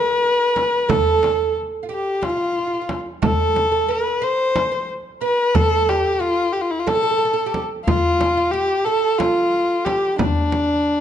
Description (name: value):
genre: Turkish makam ensemble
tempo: 181 BPM (eighths)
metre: 7/8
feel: straight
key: D makam huseyni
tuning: A4 = 440 Hz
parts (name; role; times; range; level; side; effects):
- rich kamancheh; melody; 0.0-11.0 s; D4 to C5; -19 LUFS; left 3 dB; none
- oud; second line; 0.0-11.0 s; D4 to C5; -24 LUFS; right 8 dB; none
- darbuka; percussion; 0.2-10.4 s; none; -26 LUFS; left 2 dB; none
- frame drum; percussion; 0.6-10.7 s; none; -24 LUFS; right 3 dB; none
room: wet recital hall reverb, RT60 1.8 s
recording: nothing above 10.7 kHz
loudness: -17 LUFS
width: side -9 dB against mid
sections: 0.0-11.0 A section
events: none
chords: none